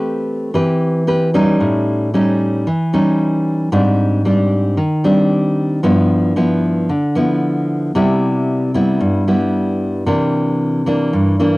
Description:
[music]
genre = bossa nova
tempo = 113 BPM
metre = 4/4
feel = straight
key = C major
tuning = A4 = 437 Hz
[part]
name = nylon-string guitar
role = solo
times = 0.0-11.6 s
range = G2 to B4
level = -14 LUFS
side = equal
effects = cassette tape
[sound]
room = wet booth ambience, RT60 0.2 s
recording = home recording on cassette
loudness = -14 LUFS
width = side -21 dB against mid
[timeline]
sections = 0.0-11.6 A section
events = none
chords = 0.0 Am9; 1.6 A7#11; 3.7 Abmaj7#11; 5.8 G6; 8.0 Cmaj7; 10.1 C9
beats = 0.01 0.54 1.07 | 1.60 2.13 2.66 3.19 | 3.71 4.24 4.77 5.30 | 5.83 6.36 6.89 7.42 | 7.95 8.48 9.01 9.54 | 10.07 10.60 11.13

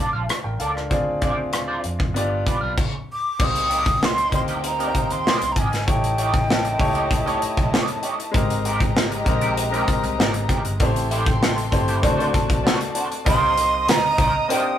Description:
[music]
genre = lush 1970s-style soul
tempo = 97 BPM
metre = 4/4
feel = straight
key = C minor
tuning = A4 = 440 Hz
[part]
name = clear concert grand piano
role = accompaniment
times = 0.0-14.8 s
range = Ab3 to G5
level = -26 LUFS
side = left 2 dB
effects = none
[part]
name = electric guitar at the edge of break-up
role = riff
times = 0.0-14.7 s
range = C4 to F5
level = -28 LUFS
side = right 2 dB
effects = wah
[part]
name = vintage muted fingered electric bass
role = bass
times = 0.1-14.3 s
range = G1 to F2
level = -28 LUFS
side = equal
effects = none
[part]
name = modern studio drum kit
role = drums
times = 0.3-14.6 s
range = crash cymbal, hi-hat, kick drum, rim click, snare drum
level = -22 LUFS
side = equal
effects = none
[part]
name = breathy jazz flute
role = melody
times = 3.1-7.7, 13.3-14.8 s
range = G5 to Eb6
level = -22 LUFS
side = right 2 dB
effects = none
[part]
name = warm studio violin section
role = second line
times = 3.4-14.8 s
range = Eb4 to Eb6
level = -29 LUFS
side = left 1 dB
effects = none
[sound]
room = moderate small room reverb, RT60 0.5 s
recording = rough rehearsal-room recording, warm saturation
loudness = -18 LUFS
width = side -10 dB against mid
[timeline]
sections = 0.0-3.4 A section; 3.4-13.3 B section; 13.3-14.8 C section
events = stop 2.8-3.4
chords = 0.0 Bbmaj7; 0.9 Dm7b5; 2.2 G7; 3.4 Cm7; 5.9 A7#11; 8.3 Abmaj9; 10.8 Am7; 12.0 D7; 13.3 Cm7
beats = 0.29 | 0.91 1.53 2.15 2.77 | 3.39 4.01 4.63 5.25 | 5.87 6.49 7.11 7.73 | 8.34 8.96 9.58 10.19 | 10.81 11.43 12.04 12.66 | 13.27 13.88 14.50

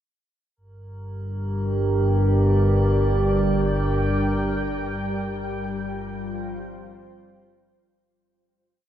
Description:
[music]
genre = dark ambient drone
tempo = free time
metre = none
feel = none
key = G minor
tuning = A4 = 440 Hz
[part]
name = deep dark ambient pad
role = sustained chords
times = 1.4-8.1 s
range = G3 to G5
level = -27 LUFS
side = right 3 dB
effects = chorus, built-in reverb, shimmer reverb
[part]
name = analog drone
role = drone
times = 1.0-8.2 s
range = G1 to G2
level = -22 LUFS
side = equal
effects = chorus
[part]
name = metallic inharmonic drone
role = texture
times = 1.1-8.1 s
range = Bb4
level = -33 LUFS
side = right 1 dB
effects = chorus, built-in reverb, shimmer reverb
[sound]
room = wet huge ambient reverb, RT60 8.6 s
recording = none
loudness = -20 LUFS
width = side -10 dB against mid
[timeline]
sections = 0.6-8.1 A section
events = fade-out on synth drone 0.6-8.1; fade-out 4.3-8.1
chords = 0.6 Gm; 4.3 Fsus2/G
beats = free time

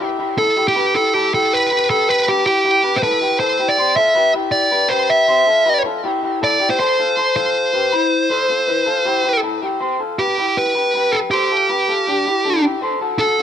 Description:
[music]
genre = indie pop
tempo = 159 BPM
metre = 4/4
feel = straight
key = C major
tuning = A4 = 436 Hz
[part]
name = electric guitar through a small old amp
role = arpeggios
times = 0.0-13.4 s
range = D4 to B5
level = -20 LUFS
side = left 3 dB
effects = none
[part]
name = fuzz lead guitar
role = melody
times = 0.4-13.4 s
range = G4 to E5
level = -15 LUFS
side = right 1 dB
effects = distortion, ping-pong delay
[sound]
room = moderate small room reverb, RT60 0.5 s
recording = rough home demo mix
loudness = -14 LUFS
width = side -9 dB against mid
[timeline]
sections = 0.0-9.8 A section; 9.8-13.4 B section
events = none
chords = 0.0 Em; 3.6 Cmaj7; 11.3 D7sus4; 12.8 D7 (rootless)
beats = 0.37 | 0.75 1.13 1.51 1.89 | 2.26 2.64 3.02 3.40 | 3.77 4.15 4.53 4.90 | 5.28 5.66 6.03 6.41 | 6.79 7.16 7.54 7.92 | 8.29 8.67 9.05 9.43 | 9.80 10.18 10.56 10.94 | 11.31 11.69 12.07 12.45 | 12.82 13.20

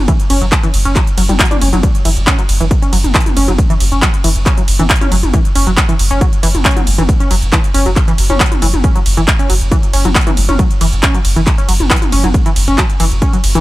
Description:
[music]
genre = driving peak-time techno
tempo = 137 BPM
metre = 4/4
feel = straight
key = unclear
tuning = A4 = 440 Hz
[part]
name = warm sub bass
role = bass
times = 0.0-13.6 s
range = F#1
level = -14 LUFS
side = equal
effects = overdrive, sidechain pumping, low-pass filter
[part]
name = tight sequenced synth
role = riff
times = 0.1-13.6 s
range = E3 to D4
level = -18 LUFS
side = equal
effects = chorus, sidechain pumping, dub echo
[part]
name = electronic kick drum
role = drums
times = 0.1-13.3 s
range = none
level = -13 LUFS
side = equal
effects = none
[part]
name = techno drum kit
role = drums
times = 0.1-13.6 s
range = handclaps, hi-hat, ride cymbal, toms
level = -16 LUFS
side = equal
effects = none
[sound]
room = little or no reverb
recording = none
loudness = -10 LUFS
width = side -17 dB against mid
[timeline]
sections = 0.0-13.6 A section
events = none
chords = 0.0 F#5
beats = | 0.08 0.52 0.96 1.39 | 1.83 2.27 2.71 3.15 | 3.58 4.02 4.46 4.90 | 5.33 5.77 6.21 6.65 | 7.09 7.53 7.96 8.40 | 8.84 9.28 9.71 10.15 | 10.59 11.03 11.47 11.90 | 12.34 12.78 13.22

